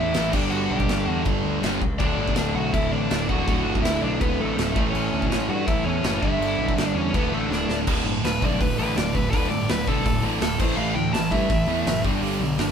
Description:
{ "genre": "punk rock", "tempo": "164 BPM", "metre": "4/4", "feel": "straight", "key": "unclear", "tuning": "A4 = 439 Hz", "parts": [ { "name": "overdriven electric guitar", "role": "melody", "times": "0.0-12.0 s", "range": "A3 to A5", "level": "-27 LUFS", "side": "equal", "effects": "none" }, { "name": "distorted electric guitar", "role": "riff", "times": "0.0-12.7 s", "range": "D2 to A3", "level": "-28 LUFS", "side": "right 8 dB", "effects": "distortion" }, { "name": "heavy high-gain guitar", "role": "riff", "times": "0.0-12.7 s", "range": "D2 to A3", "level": "-31 LUFS", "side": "equal", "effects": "distortion" }, { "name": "sludgy distorted guitar", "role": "riff", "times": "0.0-12.7 s", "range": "D2 to A3", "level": "-29 LUFS", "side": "left 9 dB", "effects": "overdrive" }, { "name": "fuzz picked electric bass", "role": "bass", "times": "0.0-12.7 s", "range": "D1 to G2", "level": "-29 LUFS", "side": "equal", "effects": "overdrive" }, { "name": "big rock drum kit", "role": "drums", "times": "0.1-12.7 s", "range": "crash cymbal, hi-hat, kick drum, snare drum", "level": "-26 LUFS", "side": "equal", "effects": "none" } ], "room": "light reverb", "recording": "band playing live in one room", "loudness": "-20 LUFS", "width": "side -7 dB against mid", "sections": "0.0-7.9 A section; 7.9-12.7 B section", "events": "drum fill 7.5-7.9; overdriven electric guitar solo 7.9-12.7", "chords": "0.3 G5; 2.0 D; 4.8 A; 6.2 G; 7.1 D5; 10.6 A5; 12.0 G" }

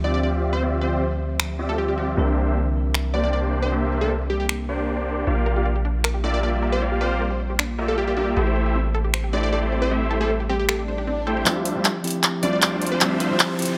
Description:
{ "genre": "future bass", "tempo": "155 BPM", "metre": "4/4", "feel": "half-time", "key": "D minor", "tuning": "A4 = 441 Hz", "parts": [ { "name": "plucky unison lead", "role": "melody", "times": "0.0-13.7 s", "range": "G4 to D5", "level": "-30 LUFS", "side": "equal", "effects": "vintage 12-bit sampler grit, delay" }, { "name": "bell-like tine electric piano", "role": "accompaniment", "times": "0.0-5.3, 11.4-13.8 s", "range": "E3 to E5", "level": "-32 LUFS", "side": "equal", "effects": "delay" }, { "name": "ethereal airy pad", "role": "sustained chords", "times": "0.0-13.8 s", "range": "C3 to E5", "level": "-37 LUFS", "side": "equal", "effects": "none" }, { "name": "supersaw chords", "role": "riff", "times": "0.0-13.4 s", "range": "G3 to G5", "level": "-28 LUFS", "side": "equal", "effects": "low-pass filter" }, { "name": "long sustained 808-style bass", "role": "bass", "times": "0.0-13.4 s", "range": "A1 to D2", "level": "-27 LUFS", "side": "equal", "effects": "high-pass filter" }, { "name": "trap drum kit", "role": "drums", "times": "1.4-13.7 s", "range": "finger snaps, handclaps, hi-hat", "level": "-24 LUFS", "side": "equal", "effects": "none" }, { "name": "unison pluck", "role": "arpeggios", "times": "5.3-11.4 s", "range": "C4 to D5", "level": "-35 LUFS", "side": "equal", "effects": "delay" }, { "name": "swell and riser", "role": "sound effects", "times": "10.8-13.8 s", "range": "none", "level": "-36 LUFS", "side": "equal", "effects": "none" } ], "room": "light reverb, digital ambience", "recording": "none", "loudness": "-22 LUFS", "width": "mono", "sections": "0.0-11.5 A section; 11.5-13.8 B section", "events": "swell 10.8-11.5; build-up 11.5-13.8; drum fill 11.5-13.8; filter sweep on supersaw synth 11.5-13.8", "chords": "0.0 Dm11; 2.2 C9; 5.3 Gm7/Bb; 8.4 Am7; 11.5 Dm11" }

